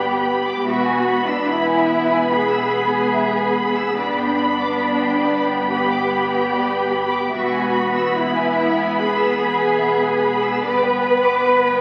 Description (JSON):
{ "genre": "cinematic, emotional film score for orchestra", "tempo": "72 BPM", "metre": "4/4", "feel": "rubato", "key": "unclear", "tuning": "A4 = 440 Hz", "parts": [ { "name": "rich symphonic violin section", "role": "melody", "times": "0.0-11.8 s", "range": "B5", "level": "-26 LUFS", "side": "equal", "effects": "none" }, { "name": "rich symphonic violin section", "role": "second line", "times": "0.0-11.8 s", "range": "D5 to E6", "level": "-29 LUFS", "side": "equal", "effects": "none" }, { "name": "warm symphonic viola section", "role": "accompaniment", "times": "0.0-11.8 s", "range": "B3", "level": "-25 LUFS", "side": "equal", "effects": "none" }, { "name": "rich studio cello section", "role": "bass", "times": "0.0-11.8 s", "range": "D4 to B4", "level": "-22 LUFS", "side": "equal", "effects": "none" }, { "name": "rich studio double bass section", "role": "bass", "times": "0.0-11.8 s", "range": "E1 to G1", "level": "-33 LUFS", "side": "equal", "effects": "none" } ], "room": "wet scoring stage reverb, RT60 1.9 s", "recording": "very old 78 rpm record, vinyl crackle", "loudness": "-19 LUFS", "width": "mono", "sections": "0.0-11.8 A section", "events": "none", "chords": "0.0 G; 0.6 E; 4.0 G; 7.3 E; 10.6 G", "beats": "| 0.65 1.49 2.33 3.17 | 4.00 4.83 5.69 6.52 | 7.34 8.17 8.99 9.82 | 10.65 11.48" }